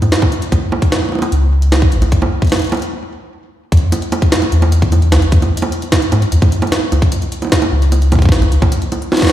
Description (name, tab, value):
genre	IDM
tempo	150 BPM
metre	4/4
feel	straight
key	unclear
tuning	A4 = 440 Hz
part	warm sub bass	bass	0.0-8.6 s	G#1 to G#2	-11 LUFS	equal	none
part	jungle sampler-style drum kit	drums	0.0-9.3 s	bongos, hi-hat, snare drum	-16 LUFS	right 2 dB	ping-pong delay
part	electronic kick drum	drums	0.2-9.3 s	none	-14 LUFS	equal	none
room	light reverb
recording	played on a big sound system in a bare room, large studio reverb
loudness	-11 LUFS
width	side -12 dB against mid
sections	0.0-3.7 A section; 3.7-9.3 B section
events	stop 2.9-3.7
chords	none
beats	0.12 | 0.52 0.92 1.32 1.72 | 2.12 2.52 2.92 3.32 | 3.72 4.12 4.52 4.92 | 5.32 5.72 6.12 6.52 | 6.92 7.32 7.72 8.12 | 8.52 8.92